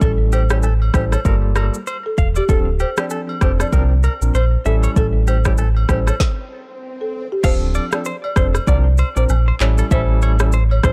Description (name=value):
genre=afrobeats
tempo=97 BPM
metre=4/4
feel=swing 58% on 16ths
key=D minor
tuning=A4 = 437 Hz
part: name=folk marimba with soft mallets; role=melody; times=0.0-10.9 s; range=G4 to D5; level=-28 LUFS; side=equal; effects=delay
part: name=barky tine electric piano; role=accompaniment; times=0.0-10.9 s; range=F3 to Bb4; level=-29 LUFS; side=equal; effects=fast tremolo
part: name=direct-recorded clean electric guitar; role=riff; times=0.0-10.9 s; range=G4 to F5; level=-31 LUFS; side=equal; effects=delay
part: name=sub bass with octave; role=bass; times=0.0-10.9 s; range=D1 to C2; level=-18 LUFS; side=equal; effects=none
part: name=afro-pop drum kit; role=drums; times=0.0-10.9 s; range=crash cymbal, handclaps, kick drum, rim click, shaker, snare drum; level=-21 LUFS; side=equal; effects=none
part: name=agogo bells and woodblock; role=percussion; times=0.3-10.8 s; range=none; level=-34 LUFS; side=equal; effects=none
part: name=swell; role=sound effects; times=5.9-7.4 s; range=none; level=-39 LUFS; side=equal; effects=none
room=little or no reverb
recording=dark, warm production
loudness=-17 LUFS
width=mono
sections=0.0-7.4 A section; 7.4-10.9 B section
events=swell 5.9-7.4; stop 6.2-7.4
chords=0.0 A7; 1.3 Gm9; 2.5 Dm7; 3.7 C9sus4; 4.7 A7; 6.2 N.C.; 7.4 Dm7; 8.7 C9sus4; 9.6 A7